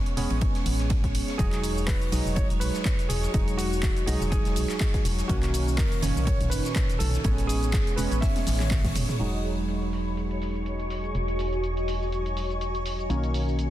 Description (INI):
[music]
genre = deep house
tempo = 123 BPM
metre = 4/4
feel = swing 55% on 16ths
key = E major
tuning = A4 = 442 Hz
[part]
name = warm analog keys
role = stabs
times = 0.0-13.7 s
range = A#2 to D#4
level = -32 LUFS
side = right 2 dB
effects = chorus, sidechain pumping, low-pass filter, ping-pong delay
[part]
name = granular cloud pad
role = texture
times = 0.7-13.7 s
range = D#4 to B5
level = -37 LUFS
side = left 1 dB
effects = built-in reverb, sidechain pumping
[part]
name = soft string machine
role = texture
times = 0.0-13.7 s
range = C#5 to C#6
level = -39 LUFS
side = right 1 dB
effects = phaser, ensemble chorus, sidechain pumping
[part]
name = punchy analog drum machine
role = drums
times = 0.1-13.7 s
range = cabasa, handclaps, hi-hat, toms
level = -35 LUFS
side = equal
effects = low-pass filter on hats, low-pass filter on perc, low-pass filter on snare, low-pass filter on toms
[part]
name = organ-like FM bass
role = bass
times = 0.2-13.7 s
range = E1 to B1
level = -28 LUFS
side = equal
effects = sidechain pumping
[part]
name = big rock drum kit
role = drums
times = 0.2-9.2 s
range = hi-hat, ride cymbal, snare drum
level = -40 LUFS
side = right 1 dB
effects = sidechain pumping on cymbals, high-pass filter on cymbals, sidechain pumping on hats, high-pass filter on hats, high-pass filter on snare, high-pass filter on room
[part]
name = electronic kick drum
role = drums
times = 0.4-8.9 s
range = none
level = -27 LUFS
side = equal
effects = none
[part]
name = overdriven tine electric piano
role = melody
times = 1.4-8.9 s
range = F#4 to E5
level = -34 LUFS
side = right 1 dB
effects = dub echo
[sound]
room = digital ambience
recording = dense, heavily limited modern master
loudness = -24 LUFS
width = side -13 dB against mid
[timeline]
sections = 0.0-9.2 A section; 9.2-13.7 B section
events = drum fill 8.2-9.2; filter sweep on drum 9.2-13.7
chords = 0.0 Amaj9; 1.4 Emaj9; 5.3 Bmaj9; 7.2 Amaj9; 9.2 Emaj9; 13.1 Bmaj9